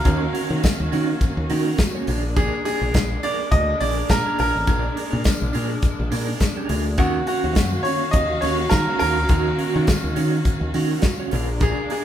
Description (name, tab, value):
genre	disco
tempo	104 BPM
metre	4/4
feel	swing 56% on 16ths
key	Eb minor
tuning	A4 = 438 Hz
part	bright baby grand piano	melody	0.0-12.0 s	Gb4 to Eb5	-24 LUFS	equal	none
part	semi-hollow electric guitar	accompaniment	0.0-12.0 s	Db4 to Db5	-28 LUFS	right 6 dB	tremolo
part	warm studio string section	sustained chords	0.0-12.0 s	Eb3 to F5	-27 LUFS	equal	none
part	modern bright fingered electric bass	bass	0.0-11.7 s	A1 to Eb3	-24 LUFS	equal	none
part	modern studio drum kit	drums	0.1-12.0 s	hi-hat, kick drum, snare drum	-23 LUFS	left 1 dB	none
part	tambourine	percussion	0.1-12.0 s	none	-40 LUFS	left 4 dB	none
room	moderate large studio reverb, RT60 1.0 s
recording	band playing live in one room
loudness	-18 LUFS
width	side -10 dB against mid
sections	0.0-12.0 A section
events	none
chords	0.0 Ebm7; 2.1 Bb7; 7.0 Ebm7; 11.3 Bb7